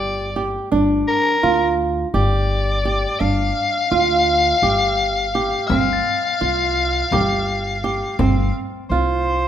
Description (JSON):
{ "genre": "contemporary instrumental, chamber music in an uneven meter", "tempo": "169 BPM (eighths)", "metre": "7/8", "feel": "straight", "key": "G minor", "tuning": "A4 = 440 Hz", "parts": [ { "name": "raspy soprano saxophone", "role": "melody", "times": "0.0-9.5 s", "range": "Bb4 to F5", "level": "-20 LUFS", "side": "left 3 dB", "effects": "none" }, { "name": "flamenco guitar", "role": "arpeggios", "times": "0.0-9.5 s", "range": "C4 to G4", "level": "-21 LUFS", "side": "right 3 dB", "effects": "none" }, { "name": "upright bass", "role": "bass", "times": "0.0-9.5 s", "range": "G1 to D2", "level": "-23 LUFS", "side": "equal", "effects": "none" }, { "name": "frame drum", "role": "percussion", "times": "5.7-9.4 s", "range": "none", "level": "-25 LUFS", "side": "left 4 dB", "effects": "none" }, { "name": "glockenspiel with rubber mallets", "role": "texture", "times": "5.7-8.6 s", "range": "F6 to A6", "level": "-29 LUFS", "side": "left 7 dB", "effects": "none" } ], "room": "moderate recital hall reverb, RT60 1.3 s", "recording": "none", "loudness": "-16 LUFS", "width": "side -10 dB against mid", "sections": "0.0-9.5 A section", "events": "none", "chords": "0.0 G7(no3); 5.7 Fadd9/G" }